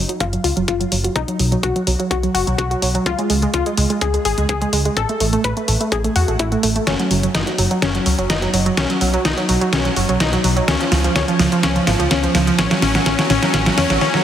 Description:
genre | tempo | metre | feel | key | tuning
progressive house | 126 BPM | 4/4 | straight | unclear | A4 = 440 Hz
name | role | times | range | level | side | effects
analog pluck | arpeggios | 0.0-14.2 s | E#3 to B4 | -18 LUFS | equal | chorus, vintage 12-bit sampler grit, sidechain pumping, tape echo
dark detuned saw bass | bass | 0.0-14.0 s | F#1 to E2 | -21 LUFS | equal | sidechain pumping
pop drum kit | drums | 0.1-14.2 s | hi-hat, snare drum | -20 LUFS | equal | overdrive
electronic kick drum | drums | 0.2-13.6 s | none | -24 LUFS | equal | overdrive, high-pass filter on kick, high-pass filter on room
room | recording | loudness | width
wet lush hall reverb, RT60 2.0 s | heavily compressed radio sound, multiband compression | -15 LUFS | side -10 dB against mid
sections
0.0-14.2 A section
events
build-up 0.0-14.2; filter sweep on synth pluck 0.0-14.2; drum fill 6.9-14.0, 14.0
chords
0.0 F#5; 1.2 B5; 3.1 C#5; 5.0 A5; 6.9 F#5; 8.8 B5; 10.7 C#; 12.6 A5

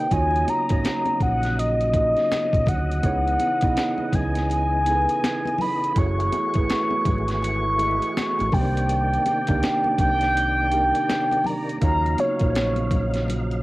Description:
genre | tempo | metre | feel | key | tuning
R&B, neo-soul | 82 BPM | 4/4 | swing 62% on 16ths | unclear | A4 = 438 Hz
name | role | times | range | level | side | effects
mellow horn-like synth lead | melody | 0.0-13.6 s | C#5 to C#6 | -23 LUFS | equal | chorus, cassette tape, plate reverb
tine electric piano | accompaniment | 0.0-13.6 s | A3 to E5 | -28 LUFS | right 3 dB | overdrive, cassette tape, plate reverb
tonewheel organ | sustained chords | 0.0-13.6 s | C3 to E#5 | -32 LUFS | equal | chorus vibrato, fast rotary speaker, cassette tape
deep dub fingered electric bass | bass | 0.1-13.6 s | F#1 to D#2 | -25 LUFS | equal | none
boom bap sampler-style drum kit | drums | 0.1-13.6 s | hi-hat, kick drum, snare drum | -26 LUFS | equal | none
congas | percussion | 0.1-13.5 s | none | -34 LUFS | left 4 dB | none
room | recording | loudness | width
light reverb | home recording on cassette, vinyl crackle | -19 LUFS | side -19 dB against mid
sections
0.0-13.6 A section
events
none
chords
0.1 D#m9; 3.0 C#m9; 6.0 F#m9; 8.5 Cm9; 11.8 D#m9

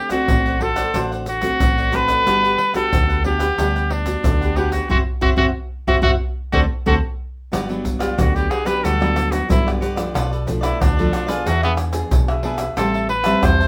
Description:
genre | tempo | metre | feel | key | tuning
samba and choro | 91 BPM | 4/4 | straight | G major from 7.5 s | A4 = 444 Hz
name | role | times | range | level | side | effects
clear trumpet | melody | 0.0-13.7 s | B3 to C5 | -23 LUFS | equal | none
nylon-string guitar | accompaniment | 0.0-13.7 s | G2 to Ab4 | -27 LUFS | equal | none
cavaquinho | accompaniment | 0.1-13.7 s | D4 to A5 | -28 LUFS | equal | none
egg shaker, surdo, pandeiro and tamborim | percussion | 0.1-13.7 s | none | -24 LUFS | equal | none
hollow-body short-scale fingered electric bass | bass | 0.3-13.7 s | F#1 to G2 | -26 LUFS | equal | none
room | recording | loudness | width
moderate studio reverb, RT60 0.5 s | none | -19 LUFS | mono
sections
0.0-7.5 A section; 7.5-13.7 B section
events
band accent 4.9-7.5; trumpet solo 7.5-13.7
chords
0.0 D7; 2.3 Gmaj7; 4.9 Esus2/F#; 6.2 D7(no3); 7.5 Gmaj7; 10.2 Bm7b5; 11.5 E7; 12.8 Am7

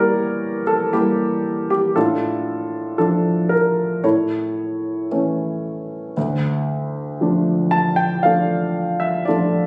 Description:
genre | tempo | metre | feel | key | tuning
classical, lyrical solo piano | 58 BPM | 4/4 | rubato | D harmonic minor | A4 = 440 Hz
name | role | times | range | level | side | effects
dark grand piano | solo | 0.0-9.7 s | D2 to A5 | -20 LUFS | equal | none
room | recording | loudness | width
light reverb | recorded on a phone in the room, studio reverb | -20 LUFS | mono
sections
0.0-9.7 A section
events
none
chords
0.0 Edim; 2.0 Dm/A; 4.0 A; 6.2 Dm

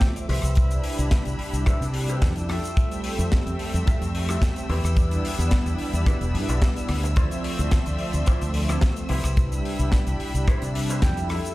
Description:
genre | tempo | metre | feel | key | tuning
nu-disco, nu disco | 109 BPM | 4/4 | straight | unclear | A4 = 440 Hz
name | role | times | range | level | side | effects
warm analog pad | accompaniment | 0.0-11.3 s | F3 to E5 | -31 LUFS | right 1 dB | chorus, sidechain pumping, tape echo
dark chamber string section | sustained chords | 0.0-11.5 s | A4 to E6 | -36 LUFS | left 1 dB | sidechain pumping
kick drum | drums | 0.0-11.1 s | none | -21 LUFS | equal | studio reverb
tight funk drum kit | drums | 0.0-11.5 s | hi-hat, rim click, shaker, snare drum | -33 LUFS | left 1 dB | studio reverb
electric guitar with an envelope filter | riff | 0.2-11.5 s | E4 to G5 | -34 LUFS | left 1 dB | lush chorus, tape echo
fingered electric bass with an envelope filter | bass | 0.3-11.4 s | E1 to C3 | -25 LUFS | equal | none
room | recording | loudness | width
studio ambience | played on a big sound system in a bare room, large studio reverb | -21 LUFS | side -18 dB against mid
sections
0.0-11.5 A section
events
clean electric guitar fill 10.7-11.5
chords
0.3 Cmaj7; 2.5 Fmaj9; 4.7 Em7; 7.2 Dm9; 9.1 Cmaj7

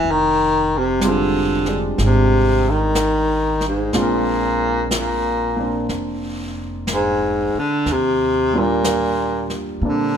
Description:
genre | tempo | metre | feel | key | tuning
jazz ballad | 61 BPM | 4/4 | swing 67% on 8ths | unclear | A4 = 439 Hz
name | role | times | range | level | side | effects
warm baritone saxophone | melody | 0.0-10.2 s | Ab2 to E3 | -18 LUFS | equal | none
warm concert grand piano | accompaniment | 0.0-10.2 s | G3 to G4 | -23 LUFS | right 1 dB | none
upright bass | bass | 0.0-10.2 s | F1 to Bb2 | -24 LUFS | right 1 dB | none
jazz brush drum kit | drums | 0.0-10.2 s | brushed snare drum, hi-hat, snare drum | -28 LUFS | left 1 dB | none
room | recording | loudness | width
moderate large studio reverb, RT60 1.0 s | minimal, uncompressed stereo recording | -16 LUFS | side -8 dB against mid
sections
0.0-10.2 A section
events
none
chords
0.0 Fm9; 3.9 Bb9; 7.9 Ebmaj9

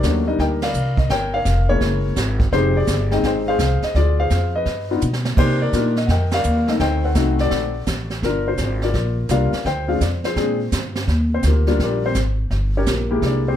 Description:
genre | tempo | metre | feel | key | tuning
jazz piano trio | 168 BPM | 4/4 | swing 66% on 8ths | C minor | A4 = 441 Hz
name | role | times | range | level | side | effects
warm concert grand piano | melody | 0.0-13.6 s | F#3 to G5 | -21 LUFS | left 3 dB | none
upright bass | bass | 0.0-13.6 s | F1 to C3 | -20 LUFS | equal | none
jazz brush drum kit | drums | 0.0-13.6 s | brushed snare drum, crash cymbal, hi-hat, kick drum, ride cymbal, snare drum | -24 LUFS | right 2 dB | none
room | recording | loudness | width
light reverb | dark, warm production | -17 LUFS | side -10 dB against mid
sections
0.0-11.1 A section; 11.1-13.6 B section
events
band accent 0.6, 6.3; drum fill 5.0-5.4; grand piano solo 11.1-13.6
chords
0.0 Cm9; 1.1 Gm7b5; 1.8 F#9; 2.5 Fm9; 4.0 Dm7b5; 4.7 Gaug; 5.4 Cm9; 6.8 D7b9; 8.2 Gm7; 9.7 Dm7b5; 10.4 Bb13; 11.1 Ebmaj9; 12.5 Gm7b5

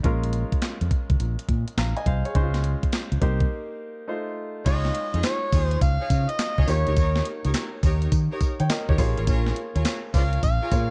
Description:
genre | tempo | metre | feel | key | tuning
R&B, new jack swing | 104 BPM | 4/4 | swing 66% on 16ths | Bb dorian | A4 = 436 Hz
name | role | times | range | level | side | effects
clear concert grand piano | accompaniment | 0.0-10.9 s | Ab3 to Bb5 | -35 LUFS | equal | none
fingered electric bass | bass | 0.0-10.9 s | A1 to Eb3 | -26 LUFS | equal | none
clean 12-bit digital drum machine | drums | 0.0-10.9 s | crash cymbal, handclaps, hi-hat, kick drum, snare drum, tambourine | -26 LUFS | equal | vintage 12-bit sampler grit
overdriven harmonica | melody | 4.7-10.9 s | C5 to F5 | -31 LUFS | equal | digital delay
rich studio string section | stabs | 4.7-10.8 s | Eb4 to Db5 | -36 LUFS | equal | digital delay
room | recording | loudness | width
digital ambience | dark, warm production, nothing above 10.3 kHz | -24 LUFS | mono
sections
0.0-4.7 A section; 4.7-10.9 B section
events
break 3.5-4.7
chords
0.0 Bbm7; 2.4 Dbmaj7; 3.2 Cm7; 4.1 F7; 4.7 Dbadd9; 6.7 Eb7; 9.0 Bbm7

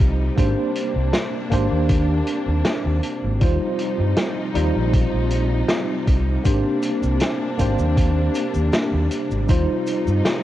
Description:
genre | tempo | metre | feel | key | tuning
vaporwave | 79 BPM | 4/4 | swing 53% on 16ths | unclear | A4 = 440 Hz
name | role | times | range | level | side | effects
tine electric piano | accompaniment | 0.0-10.4 s | G3 to C5 | -23 LUFS | equal | medium stereo tremolo, wide subtle chorus, tape echo
clear symphonic string section | sustained chords | 0.0-10.4 s | C3 to Eb4 | -29 LUFS | left 1 dB | none
overdriven fingered electric bass | bass | 0.0-10.2 s | Ab1 to G2 | -21 LUFS | equal | none
electronic kick drum | drums | 0.0-9.7 s | none | -19 LUFS | equal | overdrive
vintage drum kit | drums | 0.4-10.4 s | cabasa, hi-hat, snare drum | -26 LUFS | equal | none
room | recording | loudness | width
light reverb | worn, warbling old tape, cassette tape, warbly pitch drift | -18 LUFS | side -13 dB against mid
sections
0.0-10.4 A section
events
none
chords
0.4 Abmaj9#11; 3.4 Eb69; 6.5 Abmaj9#11; 9.5 Eb69

